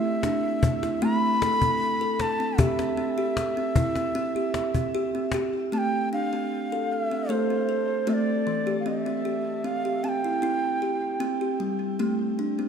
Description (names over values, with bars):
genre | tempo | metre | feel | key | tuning
world meditative, meditative tuned percussion | 76 BPM | 4/4 | straight | A minor | A4 = 441 Hz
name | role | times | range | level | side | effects
breathy bright bansuri | melody | 0.0-11.6 s | C5 to B5 | -28 LUFS | right 1 dB | shimmer reverb, tape echo
kalimba | arpeggios | 0.0-12.7 s | E3 to A4 | -26 LUFS | equal | shimmer reverb, tape echo
cajon | percussion | 0.2-5.6 s | none | -26 LUFS | left 2 dB | none
room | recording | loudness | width
wet echo chamber reverb, RT60 1.7 s, small room ambience | dark, warm production | -23 LUFS | side -7 dB against mid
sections
0.0-5.7 A section; 5.7-12.7 B section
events
none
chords
0.0 Am; 2.6 C; 5.7 Am; 8.9 C; 12.0 Am